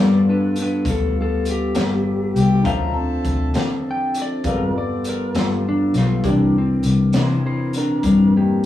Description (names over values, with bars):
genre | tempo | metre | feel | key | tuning
slow blues | 67 BPM (dotted quarters) | 12/8 | straight | G mixolydian | A4 = 441 Hz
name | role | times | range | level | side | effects
lightly driven lead guitar | melody | 0.0-8.6 s | Bb3 to G5 | -23 LUFS | equal | none
clear upright piano | accompaniment | 0.0-8.7 s | E4 to E5 | -32 LUFS | equal | none
semi-hollow electric guitar | accompaniment | 0.0-7.3 s | C3 to A4 | -26 LUFS | left 4 dB | tremolo
tonewheel organ | sustained chords | 0.0-8.7 s | E3 to Bb4 | -24 LUFS | left 1 dB | slow rotary speaker
vintage muted fingered electric bass | bass | 0.0-8.7 s | G1 to D3 | -19 LUFS | left 2 dB | none
raw garage drum kit | drums | 0.6-8.7 s | hi-hat, kick drum, snare drum | -26 LUFS | equal | none
mellow harmonica | second line | 2.4-3.5 s | G4 to Bb4 | -27 LUFS | left 2 dB | overdrive
room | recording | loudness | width
moderate small room ambience, RT60 0.5 s | rough rehearsal-room recording, small room ambience | -17 LUFS | side -12 dB against mid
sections
0.0-8.7 A section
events
none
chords
0.0 G9; 2.6 Dm7; 4.4 G9; 6.2 C9